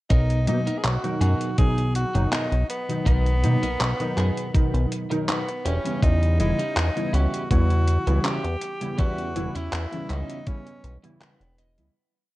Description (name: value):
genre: vaporwave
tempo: 81 BPM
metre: 4/4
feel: swing 53% on 16ths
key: B major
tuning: A4 = 442 Hz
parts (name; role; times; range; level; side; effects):
- clear tenor saxophone; melody; 0.1-11.7 s; B3 to G#4; -30 LUFS; equal; vintage 12-bit sampler grit, analog delay
- clean electric guitar; riff; 0.1-11.9 s; B3 to G5; -35 LUFS; right 2 dB; wide subtle chorus, analog delay
- chorused synth bass; bass; 0.1-11.9 s; E1 to B2; -22 LUFS; equal; none
- detuned 8-bit digital drum machine; drums; 0.1-11.9 s; handclaps, hi-hat; -30 LUFS; equal; gated reverb
- electronic kick drum; drums; 0.1-10.6 s; none; -20 LUFS; equal; none
- warbly lo-fi synth keys; accompaniment; 0.5-11.9 s; B2 to A#4; -28 LUFS; equal; wide subtle chorus
room: digital ambience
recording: cassette tape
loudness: -21 LUFS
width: side -18 dB against mid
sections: 0.1-12.0 groove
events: fade-out 8.0-12.0; clean electric guitar fill 10.8-12.0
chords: 0.1 Bmaj7; 5.7 Em6